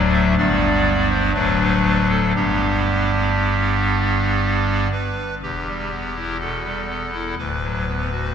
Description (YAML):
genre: classical, chorale-style piece for pipe organ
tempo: 58-63 BPM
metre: 3/4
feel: rubato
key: G major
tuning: A4 = 442 Hz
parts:
  - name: pipe organ, clarinet reed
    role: solo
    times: 0.0-8.3 s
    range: D1 to E5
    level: -17 LUFS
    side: equal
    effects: none
room: wet church reverb, RT60 3.1 s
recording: minimal, uncompressed stereo recording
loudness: -18 LUFS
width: side -8 dB against mid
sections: 0.0-5.4 A section; 5.4-8.3 B section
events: none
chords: 0.4 G; 1.4 D; 2.4 G; 5.4 Em; 7.4 Bm/D